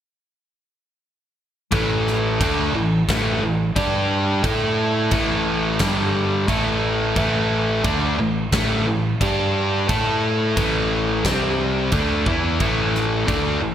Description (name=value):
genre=hard rock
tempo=88 BPM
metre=4/4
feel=straight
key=A minor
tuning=A4 = 440 Hz
part: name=overdriven electric guitar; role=riff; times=1.7-13.7 s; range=G2 to A4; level=-20 LUFS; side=equal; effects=spring reverb
part: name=overdriven picked electric bass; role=bass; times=1.7-13.7 s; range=G1 to A2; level=-26 LUFS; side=equal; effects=none
part: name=big rock drum kit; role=drums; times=1.7-13.4 s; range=crash cymbal, kick drum, snare drum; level=-25 LUFS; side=right 1 dB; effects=gated reverb
room=moderate plate reverb, RT60 2.8 s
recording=bright 1980s-style digital production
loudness=-18 LUFS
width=side -10 dB against mid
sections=1.7-13.7 A section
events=none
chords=1.7 A5; 3.8 G5; 4.4 A5; 5.8 G5; 6.5 A5; 9.2 G5; 9.9 A5; 11.2 C5; 11.9 A5